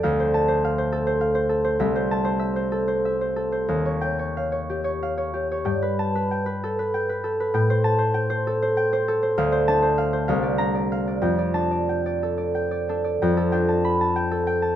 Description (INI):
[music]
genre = classical, solo harp piece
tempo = 59-70 BPM (dotted quarters)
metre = 6/8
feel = rubato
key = F lydian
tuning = A4 = 440 Hz
[part]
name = concert harp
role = solo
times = 0.0-14.8 s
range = C2 to B5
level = -20 LUFS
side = equal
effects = none
[sound]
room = little or no reverb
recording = close, detailed microphones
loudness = -21 LUFS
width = side -11 dB against mid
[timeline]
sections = 0.0-13.2 A section; 13.2-14.8 A section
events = none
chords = 0.0 Dm7; 1.8 C69; 3.7 Eb9; 5.7 Gadd9; 7.5 Am7; 9.4 Dm7; 10.3 C9sus4; 11.2 F69